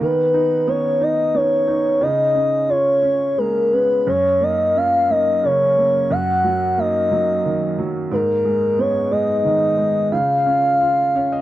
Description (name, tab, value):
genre	children's music, lullaby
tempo	89 BPM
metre	3/4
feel	rubato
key	F# major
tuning	A4 = 440 Hz
part	pure breathy sine lead	melody	0.0-11.4 s	A#4 to F#5	-16 LUFS	left 1 dB	chorus
part	felt-muted upright piano	accompaniment	0.0-11.4 s	F#2 to D#5	-22 LUFS	right 3 dB	none
room	studio ambience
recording	dry, close 1970s-style studio recording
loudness	-15 LUFS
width	side -14 dB against mid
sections	0.0-11.4 A section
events	felt piano fill 10.8-11.4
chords	0.0 Badd9/D#; 2.0 C#; 4.1 F#; 6.1 D#m/F#; 8.1 G#madd9; 10.1 C#